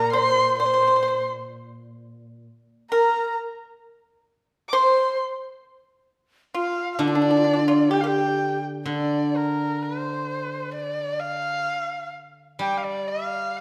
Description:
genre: chinese traditional, Chinese chamber ensemble.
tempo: 65 BPM.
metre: 2/4.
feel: rubato.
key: unclear.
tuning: A4 = 440 Hz.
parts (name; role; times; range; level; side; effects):
dark erhu; melody; 0.0-13.6 s; Bb4 to D6; -27 LUFS; equal; none.
bright reedy low xiao; second line; 0.0-8.6 s; D4 to D5; -27 LUFS; equal; none.
pipa; second line; 0.0-8.6 s; D4 to C5; -28 LUFS; equal; none.
steel-string zither; accompaniment; 0.0-2.5, 7.0-13.6 s; Bb2 to G3; -29 LUFS; equal; none.
room: wet recital hall reverb, RT60 1.3 s.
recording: none.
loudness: -23 LUFS.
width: mono.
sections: 0.0-8.9 A section; 8.9-13.6 B section.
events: none.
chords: none.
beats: 0.59 | 1.52 2.46 | 3.38 4.30 | 5.20 6.09 | 7.00 7.92 | 8.87 9.82 | 10.75 11.67 | 12.60 13.54.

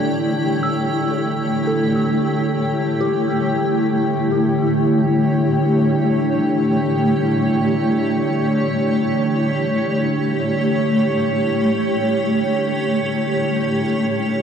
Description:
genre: ambient.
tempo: free time.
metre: none.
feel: none.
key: unclear.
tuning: A4 = 440 Hz.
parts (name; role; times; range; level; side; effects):
granular cloud pad; sustained chords; 0.0-14.4 s; A3 to G5; -18 LUFS; left 1 dB; built-in reverb.
soft synth bell; arpeggios; 0.0-3.8 s; G4 to E6; -28 LUFS; left 1 dB; chorus, phaser, tape echo.
analog drone; drone; 0.0-14.4 s; D3 to D4; -23 LUFS; right 1 dB; chorus.
drifting glass-harmonics texture; texture; 4.5-14.4 s; C#5; -27 LUFS; right 4 dB; chorus, built-in reverb.
room: wet huge ambient reverb, RT60 8.4 s.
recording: dark, warm production.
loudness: -16 LUFS.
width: side -7 dB against mid.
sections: 0.0-3.6 A section; 3.6-14.4 B section.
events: fade-in on synth texture 3.6-14.4; fade-out on synth drone 3.6-14.4.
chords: 0.0 A7.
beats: free time.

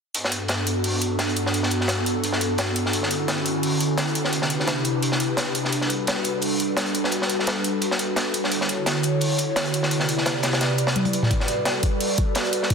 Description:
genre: liquid drum and bass.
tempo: 172 BPM.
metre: 4/4.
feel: swing 54% on 16ths.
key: G major.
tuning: A4 = 440 Hz.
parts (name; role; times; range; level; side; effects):
airy breathy pad; sustained chords; 0.1-12.7 s; G2 to D5; -23 LUFS; equal; chorus, sidechain pumping.
crunchy breakbeat drum kit; drums; 0.1-12.7 s; hi-hat, snare drum; -25 LUFS; equal; high-pass filter on hats, high-pass filter on snare, high-pass filter on room.
drum and bass drum kit; drums; 0.1-12.7 s; hi-hat, toms; -27 LUFS; equal; overdrive.
electronic kick drum; drums; 11.3-12.7 s; none; -22 LUFS; equal; overdrive.
room: wet recital hall reverb, RT60 1.4 s.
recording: dense, heavily limited modern master.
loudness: -20 LUFS.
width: side -5 dB against mid.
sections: 0.1-12.7 A section.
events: drum fill 11.0-11.3.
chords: 0.1 Gmaj9; 2.9 Dmaj9; 4.3 Cmaj9; 5.7 Gmaj9; 8.5 Dmaj9; 9.9 Cmaj9; 11.3 Gmaj9.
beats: | 0.14 0.49 0.84 1.19 | 1.54 1.89 2.24 2.59 | 2.94 3.28 3.63 3.98 | 4.33 4.68 5.03 5.38 | 5.73 6.08 6.42 6.77 | 7.12 7.47 7.82 8.17 | 8.52 8.87 9.21 9.56 | 9.91 10.26 10.61 10.96 | 11.31 11.66 12.01 12.35 | 12.70.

